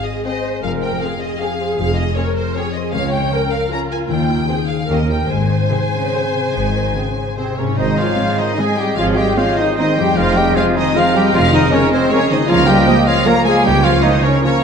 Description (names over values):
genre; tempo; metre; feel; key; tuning
classical; 137-167 BPM; 3/4; rubato; Ab major; A4 = 440 Hz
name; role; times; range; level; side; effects
clear studio violin section; melody; 0.0-14.6 s; C5 to Bb5; -22 LUFS; left 1 dB; none
warm symphonic viola section; accompaniment; 0.0-14.5 s; F3 to Db5; -24 LUFS; right 1 dB; none
concert harp; arpeggios; 0.0-14.6 s; F2 to Ab5; -23 LUFS; left 6 dB; none
warm symphonic violin section; second line; 0.3-14.6 s; C4 to Bb4; -24 LUFS; left 2 dB; none
rich studio cello section; bass; 0.6-14.5 s; Db2 to Bb3; -22 LUFS; right 3 dB; none
rich symphonic double bass section; bass; 0.6-14.0 s; F1 to Eb2; -22 LUFS; right 3 dB; none
small flute group; second line; 7.4-14.6 s; Ab4 to F5; -24 LUFS; left 1 dB; none
mellow French horn section; sustained chords; 7.4-14.6 s; C4 to Bb4; -22 LUFS; left 3 dB; none
clear trumpet; stabs; 7.4-14.6 s; C4 to Bb4; -22 LUFS; right 2 dB; none
bright oboe; second line; 7.8-14.6 s; Ab4 to Eb5; -26 LUFS; right 3 dB; none
warm clarinet; second line; 7.8-14.6 s; Bb3 to C4; -24 LUFS; left 3 dB; none
mellow bassoon; accompaniment; 7.8-14.6 s; F3 to Ab3; -23 LUFS; right 3 dB; none
warm tuba; bass; 7.8-14.0 s; F1 to Db2; -25 LUFS; right 4 dB; none
room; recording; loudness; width
wet recital hall reverb, RT60 1.7 s; dark, warm production; -13 LUFS; side -6 dB against mid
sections
0.0-7.8 A section; 7.8-14.6 A section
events
none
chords
0.0 Ab; 0.6 Fm; 2.9 Bbm/Db; 4.1 Ab/Eb; 4.9 Eb; 5.3 Ab; 10.2 Fm; 12.5 Bbm/Db